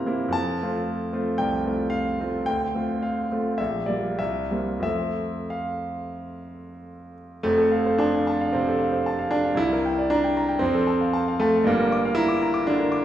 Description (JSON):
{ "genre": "classical, romantic character piece for solo piano", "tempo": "89-124 BPM", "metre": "4/4", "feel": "rubato", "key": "F major", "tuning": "A4 = 440 Hz", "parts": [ { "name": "clear concert grand piano", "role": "solo", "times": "0.0-13.0 s", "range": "F1 to D6", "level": "-22 LUFS", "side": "equal", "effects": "none" } ], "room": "wet recital hall reverb, RT60 1.4 s", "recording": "heard from further back in the room", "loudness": "-21 LUFS", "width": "side -11 dB against mid", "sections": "0.0-7.4 A section; 7.4-13.0 B section", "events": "none", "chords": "0.3 F; 2.5 Dm7; 3.6 Gm7/Bb; 4.2 C7; 4.8 F; 9.6 C9; 10.6 F; 11.7 Gm7" }